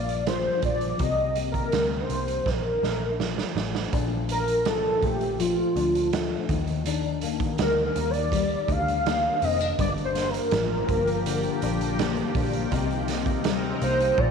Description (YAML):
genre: indie pop, bedroom pop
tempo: 82 BPM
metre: 4/4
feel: straight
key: Bb major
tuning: A4 = 440 Hz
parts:
  - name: warm velvety synth lead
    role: melody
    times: 0.0-14.3 s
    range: F4 to F5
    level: -25 LUFS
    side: right 1 dB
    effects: ensemble chorus, slapback echo
  - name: nylon-string guitar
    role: accompaniment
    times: 0.0-14.3 s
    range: G2 to Eb4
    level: -29 LUFS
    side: left 10 dB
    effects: ensemble chorus, warbly pitch drift
  - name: vintage muted picked electric bass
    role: bass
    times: 0.0-14.3 s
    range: F1 to Eb2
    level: -31 LUFS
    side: right 1 dB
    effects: none
  - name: raw garage drum kit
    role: drums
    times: 0.1-14.3 s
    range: hi-hat, kick drum, snare drum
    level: -30 LUFS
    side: right 5 dB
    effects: none
  - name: shimmering ambient pad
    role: sustained chords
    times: 10.6-14.3 s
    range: Bb2 to Bb4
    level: -31 LUFS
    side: equal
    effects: chorus, built-in reverb
room: moderate echo chamber reverb, RT60 2.4 s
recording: 1960s-style stereo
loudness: -23 LUFS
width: side -6 dB against mid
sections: 0.0-3.9 A section; 3.9-14.3 B section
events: drum fill 2.5-3.9; soft synth lead solo 3.9-14.3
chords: 0.0 Gm7; 1.0 C5; 2.5 Bb5; 3.9 Bbmaj7; 6.5 Ebmaj7; 9.8 Gm7; 12.7 Cm7